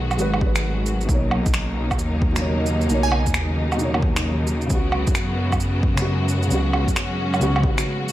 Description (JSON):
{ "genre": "future garage", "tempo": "133 BPM", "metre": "4/4", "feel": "swing 65% on 16ths", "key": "unclear", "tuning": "A4 = 440 Hz", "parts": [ { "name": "felt-muted upright piano", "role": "accompaniment", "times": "0.0-8.1 s", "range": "B2 to C#5", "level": "-26 LUFS", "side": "equal", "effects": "sidechain pumping, dub echo" }, { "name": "rich symphonic string section", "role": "sustained chords", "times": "0.0-8.1 s", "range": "C#3 to F#4", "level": "-26 LUFS", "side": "equal", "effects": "sidechain pumping" }, { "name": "swelling detuned saw bass", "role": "bass", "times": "0.0-7.8 s", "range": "G#1 to F#2", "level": "-23 LUFS", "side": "equal", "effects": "tube saturation, sidechain pumping" }, { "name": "electronic shaker, woodblock and finger snaps", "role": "drums", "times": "0.1-8.1 s", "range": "none", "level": "-26 LUFS", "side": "right 2 dB", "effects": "overdrive, studio reverb" }, { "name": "electronic kick drum", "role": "drums", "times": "0.4-7.8 s", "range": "none", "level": "-23 LUFS", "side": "equal", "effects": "overdrive, studio reverb" }, { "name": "glassy wavetable pluck", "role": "melody", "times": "3.0-3.3 s", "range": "G#5", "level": "-28 LUFS", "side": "right 5 dB", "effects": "chorus, dub echo" } ], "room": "light reverb, digital ambience", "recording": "vinyl crackle", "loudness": "-18 LUFS", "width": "side -14 dB against mid", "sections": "0.0-8.1 A section", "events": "none", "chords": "0.0 G#m7; 1.1 Bmaj9; 4.7 C#7sus4", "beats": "0.19 0.64 | 1.09 1.54 1.99 2.44 | 2.90 3.35 3.80 4.25 | 4.70 5.15 5.60 6.05 | 6.50 6.96 7.41 7.86" }